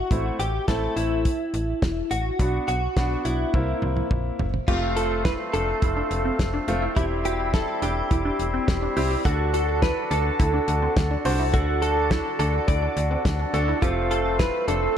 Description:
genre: synth-pop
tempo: 105 BPM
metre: 4/4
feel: straight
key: D mixolydian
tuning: A4 = 440 Hz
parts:
  - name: direct-recorded clean electric guitar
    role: melody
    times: 0.0-15.0 s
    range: E4 to D5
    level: -28 LUFS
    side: equal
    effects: analog chorus, ping-pong delay
  - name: slap-like FM bass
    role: bass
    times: 0.0-14.9 s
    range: E1 to D2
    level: -27 LUFS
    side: equal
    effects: none
  - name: clear concert grand piano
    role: accompaniment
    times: 0.1-14.4 s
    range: A3 to C5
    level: -29 LUFS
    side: equal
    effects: none
  - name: damped 70s drum kit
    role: drums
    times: 0.1-14.8 s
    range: crash cymbal, hi-hat, kick drum, snare drum, toms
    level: -25 LUFS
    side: equal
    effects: none
  - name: hand-pumped harmonium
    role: sustained chords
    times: 4.7-15.0 s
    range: D3 to A4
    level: -28 LUFS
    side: equal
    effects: none
  - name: resonant blip pluck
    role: arpeggios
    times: 4.7-14.8 s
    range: C4 to A4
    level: -32 LUFS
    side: right 1 dB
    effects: phaser, ping-pong delay
room: moderate lush hall reverb, RT60 2.1 s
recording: dreamy mix soaked in reverb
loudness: -21 LUFS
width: side -9 dB against mid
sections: 0.0-4.7 A section; 4.7-15.0 B section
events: drum fill 3.5-4.7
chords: 0.1 Am; 2.4 Bm; 3.5 C7; 4.7 F; 7.0 C/E; 9.3 D; 13.8 F

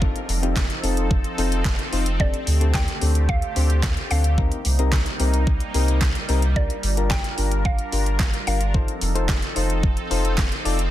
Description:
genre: dance-pop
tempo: 110 BPM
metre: 4/4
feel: straight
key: unclear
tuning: A4 = 440 Hz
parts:
  - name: mallet-like synth pluck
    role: melody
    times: 0.0-9.5 s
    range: D5 to G5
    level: -32 LUFS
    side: equal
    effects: chorus, ping-pong delay
  - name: soft electric-piano-like synth keys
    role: accompaniment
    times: 0.0-10.8 s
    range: C4 to D5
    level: -28 LUFS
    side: left 5 dB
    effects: chorus, sidechain pumping
  - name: sweeping resonant pad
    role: sustained chords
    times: 0.0-10.9 s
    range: C3 to Bb4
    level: -30 LUFS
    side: right 1 dB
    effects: chorus, sidechain pumping
  - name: warm sub bass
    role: bass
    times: 0.0-10.9 s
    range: F1 to D2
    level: -22 LUFS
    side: equal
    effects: sidechain pumping
  - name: pop drum kit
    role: drums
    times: 0.0-10.9 s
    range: handclaps, hi-hat, kick drum, snare drum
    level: -24 LUFS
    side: equal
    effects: overdrive
  - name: downlifter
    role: sound effects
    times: 0.0-2.2 s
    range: none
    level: -43 LUFS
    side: right 1 dB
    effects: none
  - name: group handclap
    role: percussion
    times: 0.6-10.5 s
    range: none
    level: -36 LUFS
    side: right 6 dB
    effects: none
room: little or no reverb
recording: dense, heavily limited modern master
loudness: -19 LUFS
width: side -13 dB against mid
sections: 0.0-10.9 A section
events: none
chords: 0.0 F7; 2.2 D7sus4; 4.4 Cm7; 6.6 Gm7; 8.7 F7

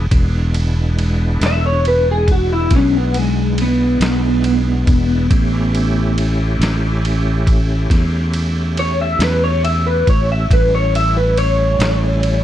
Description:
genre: slow blues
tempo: 46 BPM (dotted quarters)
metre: 12/8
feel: straight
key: unclear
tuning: A4 = 440 Hz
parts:
  - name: bright tonewheel organ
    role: sustained chords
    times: 0.0-12.4 s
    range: G3 to G4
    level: -24 LUFS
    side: right 1 dB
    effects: chorus vibrato, slow rotary speaker
  - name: fingered electric bass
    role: bass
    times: 0.0-12.4 s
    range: E1 to E2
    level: -17 LUFS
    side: equal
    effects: none
  - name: boom bap sampler-style drum kit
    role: drums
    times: 0.1-12.4 s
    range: kick drum, ride cymbal, snare drum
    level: -20 LUFS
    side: equal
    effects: none
  - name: electric guitar through a small old amp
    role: melody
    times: 1.5-12.4 s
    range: G#3 to E5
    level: -17 LUFS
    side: equal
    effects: ensemble chorus
room: little or no reverb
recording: dark, warm production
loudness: -13 LUFS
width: side -12 dB against mid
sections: 0.0-12.4 A section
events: clean electric guitar solo 0.0-12.4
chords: 0.0 E7; 5.3 A7

